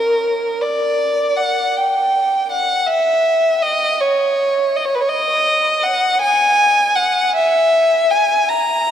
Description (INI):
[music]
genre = classical, free, expressive piece for unaccompanied violin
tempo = 53 BPM (dotted quarters)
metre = 6/8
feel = rubato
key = unclear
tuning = A4 = 439 Hz
[part]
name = rich violin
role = solo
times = 0.0-8.9 s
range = A#4 to A#5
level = -14 LUFS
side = equal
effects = none
[sound]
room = wet cathedral reverb, RT60 5.4 s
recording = none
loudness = -14 LUFS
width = side -9 dB against mid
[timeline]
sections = 0.0-8.9 A section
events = none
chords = none